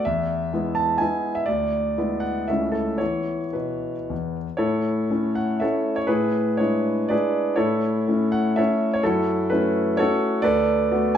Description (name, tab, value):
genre	classical, romantic triple-time dance for piano with dotted rhythms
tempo	103-136 BPM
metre	3/4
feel	rubato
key	A major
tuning	A4 = 440 Hz
part	clear grand piano	solo	0.0-11.2 s	C#2 to A5	-20 LUFS	equal	none
room	wet recital hall reverb, RT60 1.4 s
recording	minimal, uncompressed stereo recording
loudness	-20 LUFS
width	side -9 dB against mid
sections	0.0-4.6 A section; 4.6-11.2 A section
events	none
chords	0.1 E; 1.5 E7/D; 2.5 A/C#; 3.0 E5; 4.6 A; 6.1 E7/A; 7.6 A; 9.1 F#m7; 10.4 Bm7/D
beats	| 0.05 0.53 1.01 | 1.48 1.97 2.49 | 3.01 3.56 4.11 | 4.61 5.12 5.63 | 6.11 6.61 7.12 | 7.59 8.09 8.58 | 9.05 9.52 10.00 | 10.45 10.93